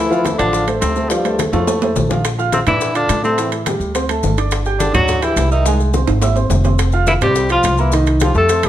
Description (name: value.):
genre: Afro-Cuban jazz.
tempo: 211 BPM.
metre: 4/4.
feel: straight.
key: D minor.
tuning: A4 = 441 Hz.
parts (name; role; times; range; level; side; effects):
warm tenor saxophone; melody; 0.0-8.7 s; G3 to A4; -18 LUFS; equal; none.
bright trombone; second line; 0.0-8.7 s; G2 to A3; -24 LUFS; left 4 dB; none.
warm baby grand piano; accompaniment; 0.0-8.7 s; Eb3 to G6; -20 LUFS; right 1 dB; none.
upright bass; bass; 0.0-8.7 s; F1 to Bb2; -18 LUFS; equal; none.
bongos; percussion; 0.1-8.7 s; none; -26 LUFS; left 6 dB; none.
congas; percussion; 0.1-8.7 s; none; -24 LUFS; left 1 dB; none.
maracas; percussion; 0.1-8.7 s; none; -30 LUFS; left 6 dB; none.
timbales; percussion; 0.3-8.7 s; none; -25 LUFS; right 8 dB; none.
room: moderate large studio reverb, RT60 1.3 s.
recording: none.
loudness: -13 LUFS.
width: side -12 dB against mid.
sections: 0.0-2.2 A section; 2.2-8.7 B section.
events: drum fill 1.5-2.2, 5.7-6.8.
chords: 0.0 Dm9; 1.7 F; 2.2 Bb; 3.4 A5; 3.9 D5; 4.5 G5; 5.7 Caug; 6.8 Fsus2; 7.9 Cmadd11.